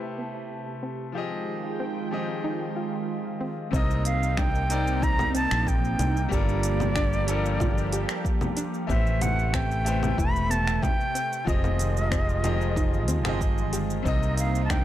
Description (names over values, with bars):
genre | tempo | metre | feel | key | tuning
sunset chillout | 93 BPM | 4/4 | straight | unclear | A4 = 440 Hz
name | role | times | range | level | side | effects
bright concert grand piano | accompaniment | 0.0-14.8 s | C3 to Eb5 | -33 LUFS | moving between left 6 dB and right 4 dB | auto-pan, analog delay
lush unison pad | sustained chords | 0.0-14.8 s | C3 to A5 | -32 LUFS | right 1 dB | chorus, phaser
soft round pluck | arpeggios | 0.0-14.8 s | B3 to G4 | -37 LUFS | left 1 dB | chorus, cassette tape, analog delay
jazz flute | melody | 3.7-14.8 s | D5 to B5 | -30 LUFS | right 1 dB | analog delay
mellow fretless electric bass | bass | 3.7-14.8 s | E1 to Eb2 | -26 LUFS | equal | tube saturation
deep house drum kit | drums | 3.7-14.8 s | congas, finger snaps, hi-hat, shaker | -32 LUFS | equal | none
electronic kick drum | drums | 3.7-14.8 s | none | -27 LUFS | equal | none
room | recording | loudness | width
little or no reverb | dry, gritty hardware recording | -23 LUFS | side -12 dB against mid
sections
0.0-3.7 A section; 3.7-14.8 B section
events
filter sweep on analog synth pad 0.0-3.7; filter sweep on synth arpeggio sound 0.0-3.7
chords
0.0 Am9; 1.1 Fm9; 3.7 Cm9; 6.3 Gm9; 8.9 Am9; 11.5 Fm9; 14.1 Cm9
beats
0.51 | 1.15 1.79 2.44 3.09 | 3.73 4.38 5.02 5.67 | 6.31 6.96 7.60 8.25 | 8.89 9.54 10.18 10.83 | 11.47 12.12 12.76 13.41 | 14.05 14.70